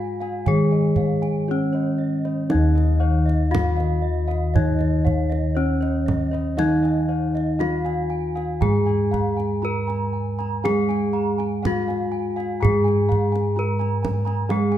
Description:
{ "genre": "Javanese gamelan", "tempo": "59 BPM", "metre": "4/4", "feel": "straight", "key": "unclear", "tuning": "A4 = 442 Hz", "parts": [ { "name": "gamelan-type bronze metallophone", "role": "melody", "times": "0.0-14.8 s", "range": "Db4-45c to Bb4+25c", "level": "-24 LUFS", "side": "left 2 dB", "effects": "none" }, { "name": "gamelan-type bronze metallophone", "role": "accompaniment", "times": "0.0-14.8 s", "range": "Eb3 to Ab3-35c", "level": "-27 LUFS", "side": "right 3 dB", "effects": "none" }, { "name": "gamelan-type bronze metallophone", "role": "arpeggios", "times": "0.0-14.8 s", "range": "Db5-45c to Bb5+25c", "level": "-32 LUFS", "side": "right 5 dB", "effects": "none" }, { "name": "gamelan-type bossed gongs", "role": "bass", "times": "0.0-14.8 s", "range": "Eb2 to Ab4-35c", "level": "-23 LUFS", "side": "left 1 dB", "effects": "none" }, { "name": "gamelan-type bossed gongs", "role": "arpeggios", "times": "0.2-14.8 s", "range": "Db5-45c to Bb5+25c", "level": "-33 LUFS", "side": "left 5 dB", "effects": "none" }, { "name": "kendang", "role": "percussion", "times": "0.2-14.8 s", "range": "none", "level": "-27 LUFS", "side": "right 3 dB", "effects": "none" } ], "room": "moderate recital hall reverb, RT60 1.7 s", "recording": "dark, warm production", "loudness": "-19 LUFS", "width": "side -11 dB against mid", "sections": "0.0-2.5 A section; 2.5-14.8 A section", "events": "none", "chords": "none", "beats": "0.48 1.50 | 2.51 3.53 4.54 5.56 | 6.58 7.59 8.61 9.62 | 10.64 11.64 12.62 13.57 | 14.50" }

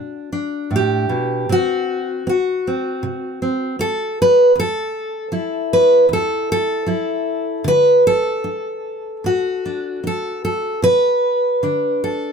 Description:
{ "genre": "folk, solo fingerstyle acoustic guitar", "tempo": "77 BPM", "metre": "4/4", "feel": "rubato", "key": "unclear", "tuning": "A4 = 439 Hz", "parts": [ { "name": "fingerpicked steel-string acoustic guitar", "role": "solo", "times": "0.0-12.3 s", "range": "E2 to B4", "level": "-16 LUFS", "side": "equal", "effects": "none" } ], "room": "light reverb", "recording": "close, detailed microphones", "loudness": "-16 LUFS", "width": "side -6 dB against mid", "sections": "0.0-12.3 A section", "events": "none", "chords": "0.0 Bm; 1.5 N.C.; 4.6 Esus2; 7.7 D; 10.8 Bm", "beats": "0.71 | 1.49 2.26 3.03 3.79 | 4.56 5.33 6.10 6.87 | 7.65 8.45 9.24 10.04 | 10.83 11.63" }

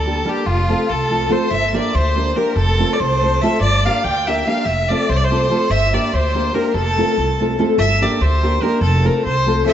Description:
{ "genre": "balkan folk, Balkan wedding band", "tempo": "287 BPM (eighths)", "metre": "5/8", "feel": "straight", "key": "F major", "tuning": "A4 = 440 Hz", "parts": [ { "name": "clear fiddle", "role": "melody", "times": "0.0-9.7 s", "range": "F4 to G5", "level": "-20 LUFS", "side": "equal", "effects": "diffuse ambient delay" }, { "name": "clear violin", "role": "second line", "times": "0.0-7.4 s", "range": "F4 to G5", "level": "-23 LUFS", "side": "left 2 dB", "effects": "none" }, { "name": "upright bass", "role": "bass", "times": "0.0-9.6 s", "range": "F1 to D2", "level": "-19 LUFS", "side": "equal", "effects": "none" }, { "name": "nylon-string guitar", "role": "accompaniment", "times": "0.1-9.7 s", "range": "G3 to Bb4", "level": "-20 LUFS", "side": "equal", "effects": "wide subtle chorus" } ], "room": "moderate lush hall reverb, RT60 2.0 s", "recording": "dreamy mix soaked in reverb, nothing above 7.8 kHz", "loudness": "-15 LUFS", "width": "side -10 dB against mid", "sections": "0.0-7.8 A section; 7.8-9.7 A section", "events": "none", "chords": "0.5 F; 1.5 Gm; 2.6 F; 3.6 Gm; 4.7 F; 5.7 Gm; 6.7 F; 7.8 Gm; 8.8 F", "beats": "0.04 0.25 | 0.46 0.67 0.88 1.09 1.30 | 1.51 1.72 1.93 2.14 2.35 | 2.56 2.77 2.98 3.18 3.39 | 3.60 3.81 4.02 4.23 4.44 | 4.65 4.86 5.07 5.28 5.49 | 5.70 5.91 6.11 6.32 6.53 | 6.74 6.95 7.16 7.37 7.57 | 7.78 7.99 8.20 8.40 8.61 | 8.82 9.03 9.23 9.44 9.65" }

